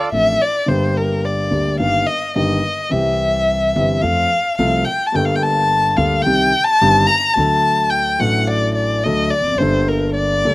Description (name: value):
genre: tango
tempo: 107 BPM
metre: 4/4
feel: rubato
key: G minor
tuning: A4 = 440 Hz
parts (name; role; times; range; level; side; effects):
- warm violin; second line; 0.0-10.5 s; Bb4 to Bb5; -16 LUFS; left 2 dB; none
- dark concert grand piano; accompaniment; 0.1-10.5 s; G1 to A4; -19 LUFS; equal; none
- upright bass; bass; 0.1-10.5 s; E1 to F2; -25 LUFS; right 2 dB; none
room: little or no reverb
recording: recorded outdoors, with no room sound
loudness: -14 LUFS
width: side -19 dB against mid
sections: 0.7-10.5 A section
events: violin solo 0.7-10.5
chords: 0.0 Dm7; 0.7 Gm; 1.8 Eb/G; 2.9 C; 4.0 F; 5.2 Gmadd9; 6.3 Cm; 7.4 D; 9.6 Gmadd9